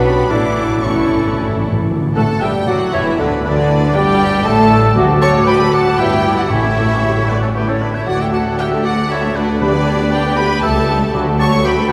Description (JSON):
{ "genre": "quick classical-period movement for symphony orchestra", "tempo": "117 BPM", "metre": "3/4", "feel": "straight", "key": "D major", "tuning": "A4 = 440 Hz", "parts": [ { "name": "rich studio violin section", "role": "melody", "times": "0.0-11.9 s", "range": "B4 to D6", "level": "-25 LUFS", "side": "equal", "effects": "none" }, { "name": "clear oboe", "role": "second line", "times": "0.0-11.9 s", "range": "G4 to A5", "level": "-24 LUFS", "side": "equal", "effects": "none" }, { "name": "hollow concert flute", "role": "second line", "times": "0.0-11.9 s", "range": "B4 to E6", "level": "-26 LUFS", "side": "equal", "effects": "none" }, { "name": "mellow clarinet", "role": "second line", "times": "0.0-11.9 s", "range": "D4 to A4", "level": "-25 LUFS", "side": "equal", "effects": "none" }, { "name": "rich studio violin section", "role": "second line", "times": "0.0-11.9 s", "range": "B3 to C#5", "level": "-26 LUFS", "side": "equal", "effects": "none" }, { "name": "warm studio viola section", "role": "accompaniment", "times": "0.0-11.9 s", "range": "D3 to B4", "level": "-24 LUFS", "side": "equal", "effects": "none" }, { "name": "mellow French horn section", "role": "sustained chords", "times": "0.0-11.9 s", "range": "D3 to G4", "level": "-25 LUFS", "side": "equal", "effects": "none" }, { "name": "rich studio cello section", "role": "bass", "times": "0.0-11.9 s", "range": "C#2 to D4", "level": "-24 LUFS", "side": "equal", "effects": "none" }, { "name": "warm studio double bass section", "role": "bass", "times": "0.0-11.9 s", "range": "E1 to D2", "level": "-23 LUFS", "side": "equal", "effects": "none" }, { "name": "timpani", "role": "percussion", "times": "0.3-11.9 s", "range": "A2 to D3", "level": "-25 LUFS", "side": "equal", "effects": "none" } ], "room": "wet cathedral reverb, RT60 6.2 s", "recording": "recorded in a church or concert hall", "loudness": "-15 LUFS", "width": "mono", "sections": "0.0-1.9 A section; 1.9-11.9 B section", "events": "timpani fill 0.3-1.9", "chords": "0.3 A; 1.9 D; 3.4 G/D; 4.5 A5; 5.0 D; 6.0 Em/G; 6.5 A; 8.1 D; 9.6 G/D; 10.6 A7/C#; 11.1 D", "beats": "| 0.31 0.85 1.38 | 1.91 2.42 2.93 | 3.44 3.95 4.45 | 4.96 5.47 5.99 | 6.51 7.03 7.55 | 8.07 8.59 9.11 | 9.62 10.12 10.63 | 11.14 11.65" }